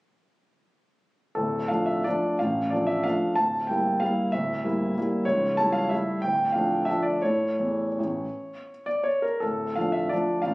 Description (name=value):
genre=classical, piano waltz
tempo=158-203 BPM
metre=3/4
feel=rubato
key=D minor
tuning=A4 = 440 Hz
part: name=clear grand piano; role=solo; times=1.4-10.5 s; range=C#1 to A5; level=-23 LUFS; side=equal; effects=none
room=moderate stone room reverb, RT60 1.2 s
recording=recorded on a phone in the room, club reverb, compression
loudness=-23 LUFS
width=side -22 dB against mid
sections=1.4-10.5 A section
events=none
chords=1.4 Dm; 3.4 Em7b5/D; 5.3 A7/C#; 6.2 Dm; 7.2 A; 9.4 Dm